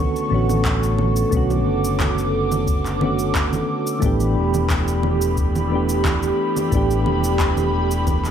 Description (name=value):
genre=sunset chillout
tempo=89 BPM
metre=4/4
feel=swing 53% on 16ths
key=B minor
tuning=A4 = 440 Hz
part: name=soft electric-piano-like synth keys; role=accompaniment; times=0.0-8.3 s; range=D3 to G4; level=-22 LUFS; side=equal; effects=chorus, auto-pan, tape echo
part: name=airy breathy pad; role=sustained chords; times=0.0-8.3 s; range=G4 to D6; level=-24 LUFS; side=right 2 dB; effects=chorus
part: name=fingered electric bass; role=bass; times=0.0-8.3 s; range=E1 to B1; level=-22 LUFS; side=left 1 dB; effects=none
part: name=electronic cabasa, congas and handclaps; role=drums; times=0.2-8.3 s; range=none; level=-26 LUFS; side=right 3 dB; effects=overdrive, small room ambience
part: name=electronic kick drum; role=drums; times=0.7-8.2 s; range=none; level=-23 LUFS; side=left 1 dB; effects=small room ambience
room=light reverb, digital ambience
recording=none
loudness=-17 LUFS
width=side -8 dB against mid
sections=0.0-8.3 A section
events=none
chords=0.0 Bm9; 4.0 A9sus4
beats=0.66 | 1.33 2.00 2.68 3.35 | 4.03 4.70 5.38 6.05 | 6.72 7.40 8.07